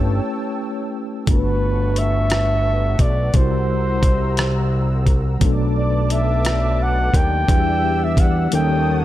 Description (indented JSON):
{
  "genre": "slow six-eight R&B",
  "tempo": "58 BPM (dotted quarters)",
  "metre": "6/8",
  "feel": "straight",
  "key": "unclear",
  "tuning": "A4 = 440 Hz",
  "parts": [
    { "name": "mellow tine electric piano", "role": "accompaniment", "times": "0.0-9.0 s", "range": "F#3 to B4", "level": "-25 LUFS", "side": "left 1 dB", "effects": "medium stereo tremolo" },
    { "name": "warm analog pad", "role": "sustained chords", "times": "0.0-9.0 s", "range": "G4 to E6", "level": "-30 LUFS", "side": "equal", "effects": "chorus" },
    { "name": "fat analog bass", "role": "bass", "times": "0.0-9.0 s", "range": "G1 to E2", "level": "-19 LUFS", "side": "equal", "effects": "none" },
    { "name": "warm flugelhorn", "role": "melody", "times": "1.3-9.0 s", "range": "B4 to G5", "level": "-23 LUFS", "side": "equal", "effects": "ping-pong delay" },
    { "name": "dusty soul sampler-style drum kit", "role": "drums", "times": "1.3-8.7 s", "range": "hi-hat, kick drum, rim click", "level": "-18 LUFS", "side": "equal", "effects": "none" }
  ],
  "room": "little or no reverb",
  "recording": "none",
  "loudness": "-16 LUFS",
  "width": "side -14 dB against mid",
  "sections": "0.0-1.3 A section; 1.3-9.0 B section",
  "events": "break 0.2-1.3; drum fill 8.5-9.0",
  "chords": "0.0 A7; 1.3 Gmaj9#11; 3.3 C7#11; 5.4 Bm7; 7.5 Em7; 8.5 Eb7#11"
}